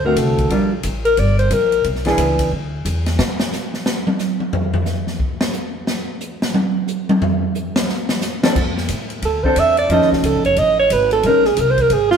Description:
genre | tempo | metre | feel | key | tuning
jazz, small-group swing and bop | 179 BPM | 4/4 | swing 63% on 8ths | unclear | A4 = 440 Hz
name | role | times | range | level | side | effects
breathy alto saxophone | second line | 0.0-1.9, 9.3-12.2 s | F4 to E5 | -15 LUFS | right 2 dB | none
hollow-body jazz guitar | accompaniment | 0.0-2.5, 8.4-11.4 s | D3 to Bb4 | -19 LUFS | equal | none
upright bass | bass | 0.0-3.4, 8.6-12.2 s | F1 to A2 | -21 LUFS | equal | none
swinging big-band drum kit | drums | 0.2-12.2 s | crash cymbal, hi-hat, kick drum, ride cymbal, snare drum, toms | -20 LUFS | equal | none
room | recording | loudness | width
moderate stone room reverb, RT60 1.5 s | band playing live in one room | -15 LUFS | side -7 dB against mid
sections
0.0-8.6 A section; 8.6-12.2 A section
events
alto saxophone solo 0.0-12.2; drum solo 3.2-8.6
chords
0.0 D7; 0.5 Gm7; 1.9 E7; 3.2 N.C.; 7.9 F6; 9.9 F7alt; 11.2 Bbm11

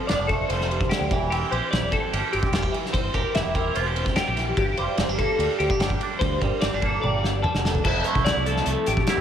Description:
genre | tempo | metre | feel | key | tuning
math rock and midwest emo | 147 BPM | 4/4 | straight | F major | A4 = 438 Hz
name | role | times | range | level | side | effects
twangy electric guitar | accompaniment | 0.0-9.2 s | F2 to A4 | -28 LUFS | right 7 dB | phaser, slapback echo
twelve-string electric guitar | arpeggios | 0.0-9.2 s | G4 to E5 | -26 LUFS | left 3 dB | ensemble chorus, slapback echo
growling fingered electric bass | bass | 0.1-9.2 s | E1 to D2 | -28 LUFS | equal | overdrive
loose indie drum kit | drums | 0.1-9.2 s | crash cymbal, hi-hat, kick drum, ride cymbal, snare drum, toms | -26 LUFS | equal | none
room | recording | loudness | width
moderate scoring stage reverb, RT60 2.0 s, small room ambience | big arena sound | -21 LUFS | side -9 dB against mid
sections
0.0-7.8 A section; 7.8-9.2 B section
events
drum fill 7.0-7.8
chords
0.0 F69; 1.1 C7/E; 4.6 Gm9; 7.8 Fmaj7

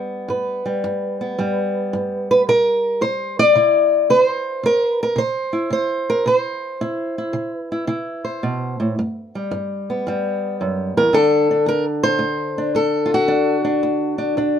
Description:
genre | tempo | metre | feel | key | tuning
acoustic country blues, solo or duo | 111 BPM | 4/4 | swing 67% on 8ths | G major | A4 = 445 Hz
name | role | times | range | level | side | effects
fingerpicked old ladder-braced acoustic guitar | solo | 0.0-14.6 s | D2 to D5 | -17 LUFS | equal | none
room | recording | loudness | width
light reverb | minimal, uncompressed stereo recording | -17 LUFS | side -8 dB against mid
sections
0.0-14.6 A section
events
none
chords
0.0 G; 2.5 C; 9.0 G; 11.1 N.C.

